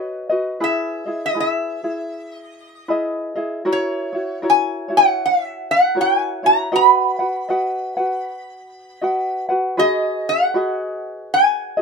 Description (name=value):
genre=hawaiian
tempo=78 BPM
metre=4/4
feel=swing 62% on 8ths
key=B major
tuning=A4 = 443 Hz
part: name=metal-body resonator slide guitar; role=melody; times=0.0-11.8 s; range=C#5 to B5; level=-16 LUFS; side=right 1 dB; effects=none
part: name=tenor ukulele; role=accompaniment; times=0.0-11.8 s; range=E4 to F#5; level=-21 LUFS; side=left 1 dB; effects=none
room=moderate booth ambience, RT60 0.2 s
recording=minimal, uncompressed stereo recording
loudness=-17 LUFS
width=side -5 dB against mid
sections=0.0-9.8 A section; 9.8-11.8 B section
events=none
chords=0.0 Badd9; 0.6 Emaj7; 3.7 F#7; 6.7 B; 9.8 G#m7